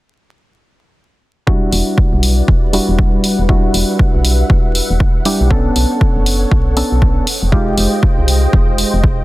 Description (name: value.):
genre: deep house.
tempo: 119 BPM.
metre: 4/4.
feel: swing 60% on 16ths.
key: E dorian.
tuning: A4 = 439 Hz.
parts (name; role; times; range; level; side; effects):
soft string machine; sustained chords; 1.5-9.2 s; G3 to G5; -23 LUFS; equal; ensemble chorus, sidechain pumping.
percussive organ stab; stabs; 1.5-9.2 s; G3 to A4; -18 LUFS; equal; chorus, sidechain pumping, tape echo.
electronic kick drum; drums; 1.5-9.2 s; none; -13 LUFS; equal; none.
woody FM bass; bass; 1.7-9.2 s; E1 to C2; -15 LUFS; equal; sidechain pumping.
electronic hi-hat; drums; 1.7-8.9 s; none; -20 LUFS; equal; none.
room: light reverb.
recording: dense, heavily limited modern master, vinyl crackle.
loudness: -11 LUFS.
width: side -18 dB against mid.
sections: 1.5-9.2 A section.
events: filter sweep on FM bass 1.5-9.2; filter sweep on synth stab 1.5-9.2; filter sweep on string machine 1.5-9.2.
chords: 1.5 Em9; 5.5 Bm9; 7.3 Fm9.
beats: | 1.47 1.98 2.48 2.99 | 3.49 3.99 4.50 5.00 | 5.51 6.01 6.51 7.02 | 7.52 8.03 8.53 9.04.